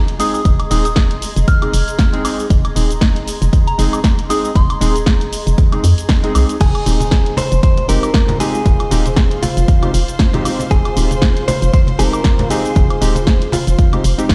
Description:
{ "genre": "deep house", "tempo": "117 BPM", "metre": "4/4", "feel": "swing 56% on 16ths", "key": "F minor", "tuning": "A4 = 440 Hz", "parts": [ { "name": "granular cloud pad", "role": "texture", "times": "0.0-14.3 s", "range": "F4 to C6", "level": "-31 LUFS", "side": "equal", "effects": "built-in reverb, sidechain pumping" }, { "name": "punchy analog drum machine", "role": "drums", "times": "0.1-14.3 s", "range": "crash cymbal, hi-hat, shaker, snare drum, woodblock", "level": "-24 LUFS", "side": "equal", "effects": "studio reverb" }, { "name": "soft synth bell", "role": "melody", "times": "0.2-5.1 s", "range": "Bb5 to F6", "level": "-26 LUFS", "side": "equal", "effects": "chorus, phaser, delay" }, { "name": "warm analog keys", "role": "stabs", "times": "0.2-14.3 s", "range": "Ab3 to Ab4", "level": "-24 LUFS", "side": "equal", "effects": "chorus, sidechain pumping, delay" }, { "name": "hollow knocking FM bass", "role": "bass", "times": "0.5-14.3 s", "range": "Eb1 to F2", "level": "-19 LUFS", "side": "equal", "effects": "sidechain pumping" }, { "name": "electronic kick drum", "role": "drums", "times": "0.5-14.3 s", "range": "none", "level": "-16 LUFS", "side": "equal", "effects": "overdrive, studio reverb" }, { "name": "direct-recorded clean electric guitar", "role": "melody", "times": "6.6-14.0 s", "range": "F4 to C5", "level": "-24 LUFS", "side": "equal", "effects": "tremolo, delay" }, { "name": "congas", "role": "percussion", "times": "6.6-14.0 s", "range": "none", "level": "-26 LUFS", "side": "equal", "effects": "none" }, { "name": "bright symphonic violin section", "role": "texture", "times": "6.6-14.3 s", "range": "C5 to C6", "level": "-34 LUFS", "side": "equal", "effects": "none" } ], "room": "little or no reverb", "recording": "played on a big sound system in a bare room, stone room reverb", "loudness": "-14 LUFS", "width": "mono", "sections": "0.0-14.3 A section", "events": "none", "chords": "0.0 Ab; 6.6 Fm7" }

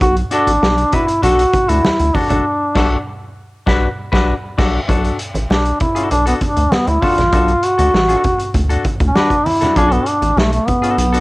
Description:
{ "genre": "funk", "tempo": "98 BPM", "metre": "4/4", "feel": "straight", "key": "B minor", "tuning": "A4 = 440 Hz", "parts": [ { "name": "mellow duduk", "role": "melody", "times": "0.0-11.2 s", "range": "A3 to F#4", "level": "-15 LUFS", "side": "equal", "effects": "cassette tape" }, { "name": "rubbery square bass", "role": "bass", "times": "0.0-11.2 s", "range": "A1 to D2", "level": "-17 LUFS", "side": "equal", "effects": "none" }, { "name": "vintage drum kit", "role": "drums", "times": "0.0-11.2 s", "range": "crash cymbal, hi-hat, kick drum, snare drum", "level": "-19 LUFS", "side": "equal", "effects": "cassette tape" }, { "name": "congas", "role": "percussion", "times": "0.0-11.2 s", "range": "none", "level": "-26 LUFS", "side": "right 2 dB", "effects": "none" }, { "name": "semi-hollow electric guitar", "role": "accompaniment", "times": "0.3-11.2 s", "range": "D4 to B4", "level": "-21 LUFS", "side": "left 4 dB", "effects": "cassette tape" } ], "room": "light reverb, small room ambience", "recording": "home recording on cassette", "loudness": "-13 LUFS", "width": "side -21 dB against mid", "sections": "0.0-4.9 A section; 4.9-11.2 B section", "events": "band accent 2.5-4.9; duduk solo 4.9-11.2", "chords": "0.0 Bm7" }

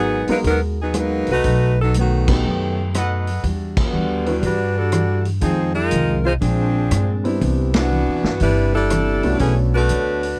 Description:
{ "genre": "jazz, big band swing", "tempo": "121 BPM", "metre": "4/4", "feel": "swing 67% on 8ths", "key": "E minor from 3.4 s", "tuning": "A4 = 438 Hz", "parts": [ { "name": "clear saxophone section", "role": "melody", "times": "0.0-10.4 s", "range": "D3 to C5", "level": "-23 LUFS", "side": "equal", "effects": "none" }, { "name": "picked steel-string acoustic guitar", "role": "accompaniment", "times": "0.0-10.3 s", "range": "F2 to C#5", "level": "-29 LUFS", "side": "equal", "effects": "none" }, { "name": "upright bass", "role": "bass", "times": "0.0-10.4 s", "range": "G1 to G2", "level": "-23 LUFS", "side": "equal", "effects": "none" }, { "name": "warm concert grand piano", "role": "accompaniment", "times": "0.3-9.9 s", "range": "G3 to B4", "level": "-26 LUFS", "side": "equal", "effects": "none" }, { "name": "vintage drum kit", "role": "drums", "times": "0.3-10.3 s", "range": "crash cymbal, hi-hat, kick drum, ride cymbal, rim click, snare drum", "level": "-26 LUFS", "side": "equal", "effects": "none" }, { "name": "brilliant trumpet section", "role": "stabs", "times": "2.9-3.4 s", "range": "A4 to F#5", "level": "-27 LUFS", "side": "equal", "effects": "none" } ], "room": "little or no reverb", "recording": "dry, close 1970s-style studio recording, tape saturation", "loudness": "-19 LUFS", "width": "mono", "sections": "0.0-3.4 A section; 3.4-10.4 B section", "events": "band accent 2.2, 3.7, 7.7", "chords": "0.0 G#m9; 1.4 B7; 3.4 Em9; 5.4 Fm7; 6.4 A#9; 7.4 Cmaj9; 9.4 Bm9" }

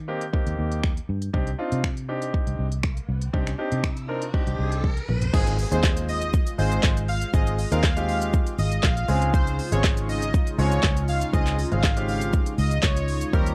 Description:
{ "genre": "dance-pop", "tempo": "120 BPM", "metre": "4/4", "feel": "straight", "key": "unclear", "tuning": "A4 = 440 Hz", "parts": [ { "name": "vintage muted fingered electric bass", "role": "bass", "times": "0.0-13.5 s", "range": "Ab1 to Eb3", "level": "-28 LUFS", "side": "equal", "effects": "sidechain pumping" }, { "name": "warm concert grand piano", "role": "accompaniment", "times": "0.1-13.5 s", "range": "G3 to Bb4", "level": "-32 LUFS", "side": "equal", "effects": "sidechain pumping" }, { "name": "deep house drum kit", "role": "drums", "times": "0.2-13.5 s", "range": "crash cymbal, finger snaps, handclaps, hi-hat, kick drum, shaker, snare drum, toms", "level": "-26 LUFS", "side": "equal", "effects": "none" }, { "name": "riser and impact", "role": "sound effects", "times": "2.7-7.3 s", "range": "none", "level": "-40 LUFS", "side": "equal", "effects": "none" }, { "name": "soft supersaw", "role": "melody", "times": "5.3-13.5 s", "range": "Ab4 to F5", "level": "-33 LUFS", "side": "equal", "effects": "sidechain pumping, digital delay" }, { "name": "chorused pulse-width pad", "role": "sustained chords", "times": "5.3-13.5 s", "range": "Db3 to G4", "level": "-36 LUFS", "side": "equal", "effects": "sidechain pumping" } ], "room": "little or no reverb", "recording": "worn, warbling old tape, cassette tape, warbly pitch drift", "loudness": "-24 LUFS", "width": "mono", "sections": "0.0-5.3 A section; 5.3-13.5 B section", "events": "riser 2.7-5.3; drum fill 4.8-5.3; drop 5.3-13.5; impact 5.3-7.3", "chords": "0.0 Eb6; 1.3 Cmadd9; 5.3 Ab6; 9.1 Dbmaj7" }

